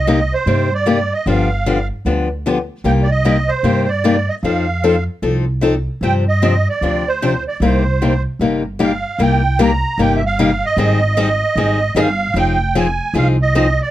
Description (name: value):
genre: acoustic string swing (jazz manouche)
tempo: 151 BPM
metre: 4/4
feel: swing 62% on 8ths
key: C minor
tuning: A4 = 439 Hz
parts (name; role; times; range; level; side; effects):
- musette accordion; melody; 0.0-13.9 s; C5 to Bb5; -19 LUFS; right 4 dB; none
- upright bass; bass; 0.0-13.8 s; F1 to G2; -18 LUFS; right 1 dB; none
- picked old ladder-braced acoustic guitar; accompaniment; 0.1-13.7 s; C3 to A4; -16 LUFS; left 3 dB; none
room: little or no reverb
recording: close, detailed microphones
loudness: -14 LUFS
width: side -13 dB against mid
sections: 0.0-9.2 A section; 9.2-13.9 B section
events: none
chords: 0.0 Cm7; 1.3 G7; 2.8 Cm7; 4.4 F7; 6.0 G7sus4; 7.6 Cm7; 10.8 Abmaj7; 12.3 Fm7